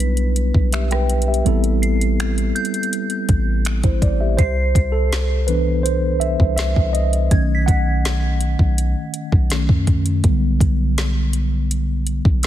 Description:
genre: contemporary R&B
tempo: 82 BPM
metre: 4/4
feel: straight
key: unclear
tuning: A4 = 439 Hz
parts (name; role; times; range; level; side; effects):
- mellow tine electric piano; accompaniment; 0.0-12.5 s; D3 to G5; -22 LUFS; right 1 dB; medium stereo tremolo
- warm 808-style bass; bass; 0.0-12.5 s; A1 to F#2; -19 LUFS; equal; none
- smooth R&B drum kit; drums; 0.0-12.5 s; finger snaps, hi-hat, kick drum, rim click, snare drum; -19 LUFS; equal; soft clipping on snare
- soft synth bell; texture; 0.0-12.5 s; E6 to C7; -30 LUFS; right 1 dB; chorus, tape echo
room: little or no reverb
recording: dense, heavily limited modern master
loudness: -16 LUFS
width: side -12 dB against mid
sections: 0.0-4.4 A section; 4.4-12.5 B section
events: tine electric piano solo 4.4-12.5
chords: 0.0 Em7/B; 1.5 Am9; 4.4 Cmaj7; 7.3 B7; 10.2 Em7/B (rootless)

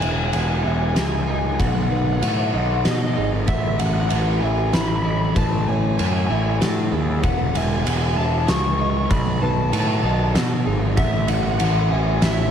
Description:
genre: post-rock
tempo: 96 BPM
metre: 3/4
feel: straight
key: E major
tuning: A4 = 436 Hz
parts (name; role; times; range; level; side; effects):
- lead guitar through a small cranked amp; melody; 0.0-12.5 s; D#5 to C#6; -26 LUFS; left 2 dB; overdrive, slapback echo, analog delay
- felt-muted upright piano; arpeggios; 0.0-12.5 s; G#4 to F#5; -32 LUFS; right 6 dB; slapback echo, analog delay
- twelve-string electric guitar; arpeggios; 0.0-12.5 s; A2 to A4; -28 LUFS; left 3 dB; analog delay
- fuzz picked electric bass; bass; 0.0-12.5 s; E1 to B2; -21 LUFS; equal; overdrive
- oversized low-tuned drum kit; drums; 0.0-12.4 s; kick drum, ride cymbal, snare drum; -23 LUFS; right 1 dB; none
room: light reverb, small room ambience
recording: lossy compression artefacts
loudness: -18 LUFS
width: side -8 dB against mid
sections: 0.0-12.5 A section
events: none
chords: 0.0 Emaj7; 1.6 B7; 3.5 Amaj7; 7.2 Emaj7; 9.1 B7; 11.0 Amaj7

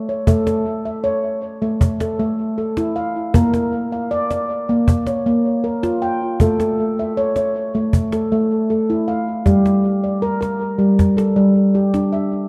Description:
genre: world meditative, meditative tuned percussion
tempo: 78 BPM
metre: 4/4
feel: straight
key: A phrygian dominant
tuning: A4 = 442 Hz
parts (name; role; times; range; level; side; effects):
- handpan; arpeggios; 0.0-12.5 s; G3 to G5; -19 LUFS; equal; diffuse ambient delay
- cajon; percussion; 0.3-12.4 s; none; -21 LUFS; equal; none
room: wet recital hall reverb, RT60 1.3 s, small room ambience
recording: dark, warm production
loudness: -18 LUFS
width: mono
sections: 0.3-12.5 A section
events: none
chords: 0.3 A; 3.3 Bb; 6.4 A; 9.5 Gm

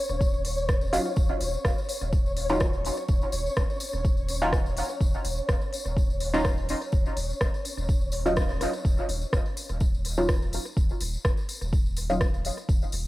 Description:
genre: dub techno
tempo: 125 BPM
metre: 4/4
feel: swing 54% on 16ths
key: Eb minor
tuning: A4 = 440 Hz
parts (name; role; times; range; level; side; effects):
- flickering grainy texture; texture; 0.0-8.9 s; Db5; -34 LUFS; left 1 dB; built-in reverb, sidechain pumping, cassette tape
- warm sub bass; bass; 0.1-13.1 s; Eb1; -31 LUFS; equal; sidechain pumping
- tambourine; percussion; 0.1-13.1 s; none; -39 LUFS; left 3 dB; none
- electronic kick drum; drums; 0.2-12.8 s; none; -25 LUFS; equal; cassette tape
- deep house drum kit; drums; 0.4-13.0 s; hi-hat, rim click; -34 LUFS; equal; cassette tape, dub echo
- filtered dub chord stab; stabs; 0.9-12.2 s; Gb3 to F4; -29 LUFS; equal; chorus, phaser, sidechain pumping, cassette tape, dub echo
room: light reverb, digital ambience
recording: home recording on cassette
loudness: -24 LUFS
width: side -17 dB against mid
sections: 0.0-8.8 A section; 8.8-13.1 A section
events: band accent 8.4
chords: 0.0 Ebm9

